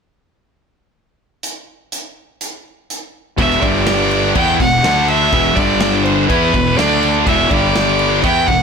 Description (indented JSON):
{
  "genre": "heavy metal",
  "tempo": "123 BPM",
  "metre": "4/4",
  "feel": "straight",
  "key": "unclear",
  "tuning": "A4 = 440 Hz",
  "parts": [
    { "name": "modern studio drum kit", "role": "drums", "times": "1.4-8.6 s", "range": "crash cymbal, hi-hat, kick drum, snare drum", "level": "-20 LUFS", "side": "equal", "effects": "none" },
    { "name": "clear fiddle", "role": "melody", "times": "3.4-8.6 s", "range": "B4 to G5", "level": "-16 LUFS", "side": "right 1 dB", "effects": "none" },
    { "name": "fuzz guitar", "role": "riff", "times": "3.4-8.6 s", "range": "E2 to E4", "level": "-22 LUFS", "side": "equal", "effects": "distortion" },
    { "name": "heavy high-gain guitar", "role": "riff", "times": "3.4-8.6 s", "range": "E2 to E4", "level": "-20 LUFS", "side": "left 14 dB", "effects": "distortion" },
    { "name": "heavy high-gain guitar", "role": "riff", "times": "3.4-8.6 s", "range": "E2 to E4", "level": "-19 LUFS", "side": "right 14 dB", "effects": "distortion" },
    { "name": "fuzz fingered electric bass", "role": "bass", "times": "3.4-8.6 s", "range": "E1 to E2", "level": "-21 LUFS", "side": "equal", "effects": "overdrive, transformer saturation" }
  ],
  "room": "light reverb",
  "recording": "blown-out, overdriven recording, overdrive",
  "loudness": "-12 LUFS",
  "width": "side -6 dB against mid",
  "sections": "1.4-3.4 A section; 3.4-8.6 B section",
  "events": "none",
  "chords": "1.4 N.C.; 3.4 E5; 3.6 G5; 4.4 Em; 4.8 D5; 5.3 E5; 5.6 G5; 6.3 E5; 6.8 D5; 7.3 E5; 7.5 G5"
}